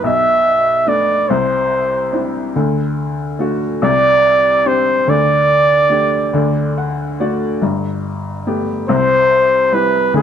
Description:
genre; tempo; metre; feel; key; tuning
acoustic folk-pop ballad; 48 BPM (dotted quarters); 6/8; straight; unclear; A4 = 440 Hz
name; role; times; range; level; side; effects
warm flugelhorn; melody; 0.0-10.2 s; A4 to E5; -12 LUFS; right 1 dB; none
felt-muted upright piano; accompaniment; 0.0-10.2 s; G1 to F#5; -17 LUFS; left 2 dB; none
room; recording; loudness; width
light reverb; minimal, uncompressed stereo recording; -13 LUFS; side -8 dB against mid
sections
0.0-7.6 A section; 7.6-10.2 A section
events
none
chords
0.0 Bm7; 1.3 Cadd9; 2.5 D; 3.8 Csus2; 5.1 Dsus4; 6.3 D; 7.6 Gadd9; 8.9 C

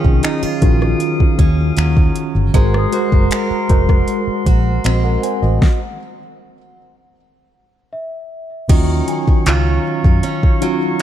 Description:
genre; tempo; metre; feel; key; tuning
contemporary R&B; 78 BPM; 4/4; straight; Eb dorian; A4 = 435 Hz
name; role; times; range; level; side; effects
mellow tine electric piano; accompaniment; 0.0-11.0 s; Eb3 to Ab5; -19 LUFS; equal; medium stereo tremolo
mellow woodwind section; sustained chords; 0.0-11.0 s; Gb3 to Eb6; -27 LUFS; left 1 dB; none
picked acoustic archtop guitar; arpeggios; 0.0-11.0 s; Eb3 to Bb4; -24 LUFS; right 5 dB; digital delay
vintage muted fingered electric bass; bass; 0.0-10.2 s; F1 to Gb2; -16 LUFS; equal; none
smooth R&B drum kit; drums; 0.0-11.0 s; crash cymbal, finger snaps, handclaps, hi-hat, kick drum, rim click, snare drum; -14 LUFS; equal; overdrive
large celesta; texture; 2.5-11.0 s; Fb5 to Eb6; -31 LUFS; left 2 dB; stereo widening, digital delay
room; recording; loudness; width
studio ambience; dark, warm production; -13 LUFS; side -11 dB against mid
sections
0.0-8.7 A section; 8.7-11.0 B section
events
stop 5.6-8.7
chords
0.0 Ebm9; 2.5 Ab9; 5.6 N.C.; 8.7 Ebm9

